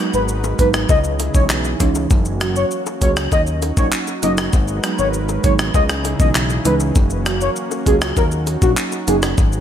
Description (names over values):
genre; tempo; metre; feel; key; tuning
dancehall; 99 BPM; 4/4; straight; unclear; A4 = 440 Hz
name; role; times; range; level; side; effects
folk marimba with medium mallets; accompaniment; 0.0-9.2 s; E3 to F#4; -24 LUFS; right 5 dB; none
warm analog pad; sustained chords; 0.0-9.6 s; C#3 to B4; -27 LUFS; equal; chorus, sidechain pumping
warm velvety synth lead; melody; 0.1-9.2 s; F#4 to D#5; -22 LUFS; left 2 dB; chorus, ping-pong delay
fat analog bass; bass; 0.1-9.6 s; F#1 to D#2; -21 LUFS; equal; none
jungle sampler-style drum kit; drums; 0.1-9.6 s; handclaps, hi-hat, kick drum, rim click, shaker; -18 LUFS; equal; gated reverb
bongos; percussion; 0.4-9.5 s; none; -30 LUFS; left 10 dB; none
room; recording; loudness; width
light reverb; bright 1980s-style digital production; -15 LUFS; side -10 dB against mid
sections
0.0-9.6 A section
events
none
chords
0.0 G#m7; 0.9 C#madd9; 2.1 F#; 3.3 D#m7; 4.5 G#m7; 5.7 C#madd9; 7.0 F#; 8.2 D#m7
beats
0.29 0.90 1.50 | 2.11 2.71 3.32 3.93 | 4.53 5.14 5.74 6.35 | 6.96 7.56 8.17 8.77 | 9.38